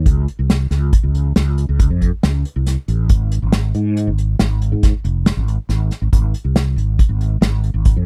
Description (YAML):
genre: progressive instrumental, band music in an uneven meter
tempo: 138 BPM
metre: 7/4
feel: straight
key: unclear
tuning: A4 = 443 Hz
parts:
  - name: mellow fretless electric bass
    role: bass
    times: 0.0-8.1 s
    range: F1 to Ab2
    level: -19 LUFS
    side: equal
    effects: ensemble chorus
  - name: unplugged drum kit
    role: drums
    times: 0.1-8.0 s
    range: hi-hat, kick drum, snare drum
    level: -17 LUFS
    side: equal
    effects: none
room: little or no reverb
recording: dry, close 1970s-style studio recording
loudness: -17 LUFS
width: mono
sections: 0.0-8.1 A section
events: none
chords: none